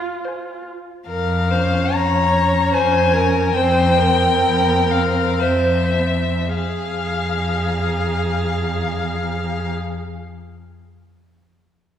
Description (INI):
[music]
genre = classical, slow romantic movement for string quartet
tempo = 50-77 BPM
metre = 3/4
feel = rubato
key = F minor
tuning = A4 = 439 Hz
[part]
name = warm violin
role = melody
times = 0.0-9.7 s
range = E5 to Bb5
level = -21 LUFS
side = left 4 dB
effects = none
[part]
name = warm violin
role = second line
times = 0.0-9.7 s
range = Bb4 to F5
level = -22 LUFS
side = right 1 dB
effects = none
[part]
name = warm viola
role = accompaniment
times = 0.0-9.7 s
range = C4 to Ab4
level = -25 LUFS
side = right 2 dB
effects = none
[part]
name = rich cello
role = bass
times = 1.1-9.7 s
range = F2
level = -21 LUFS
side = equal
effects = none
[sound]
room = wet scoring stage reverb, RT60 2.0 s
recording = recorded in a church or concert hall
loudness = -16 LUFS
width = side -9 dB against mid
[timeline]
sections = 0.0-1.1 A section; 1.1-6.5 B section; 6.5-12.0 C section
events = slowing down 0.0-6.5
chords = 0.0 Fm; 1.1 Bbm/F; 3.5 C7/F; 6.5 Fm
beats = 0.26 | 1.07 1.93 2.73 | 3.55 4.42 5.41 | 6.55 7.66 8.77